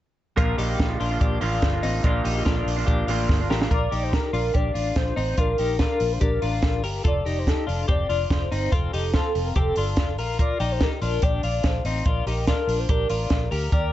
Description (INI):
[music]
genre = jangly indie pop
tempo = 144 BPM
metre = 4/4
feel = straight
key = Bb major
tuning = A4 = 438 Hz
[part]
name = electric guitar through a small old amp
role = accompaniment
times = 0.4-3.7 s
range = Bb2 to F4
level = -27 LUFS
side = right 4 dB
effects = none
[part]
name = twelve-string electric guitar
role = arpeggios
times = 0.4-13.9 s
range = C4 to Bb4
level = -29 LUFS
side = left 5 dB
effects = tremolo
[part]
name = vintage muted fingered electric bass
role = bass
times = 0.4-13.9 s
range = F1 to Eb2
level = -26 LUFS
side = equal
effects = none
[part]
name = compact cocktail drum kit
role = drums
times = 0.4-13.8 s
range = hi-hat, kick drum, snare drum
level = -24 LUFS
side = equal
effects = none
[part]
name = warm velvety synth lead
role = melody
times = 3.7-13.9 s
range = A4 to D5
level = -28 LUFS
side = left 1 dB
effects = chorus, phaser
[sound]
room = light reverb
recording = dark, warm production, nothing above 7.9 kHz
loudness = -21 LUFS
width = side -13 dB against mid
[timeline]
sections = 0.4-3.7 A section; 3.7-13.9 B section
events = drum fill 3.3-3.7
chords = 0.4 Bb; 7.1 F; 10.2 Bb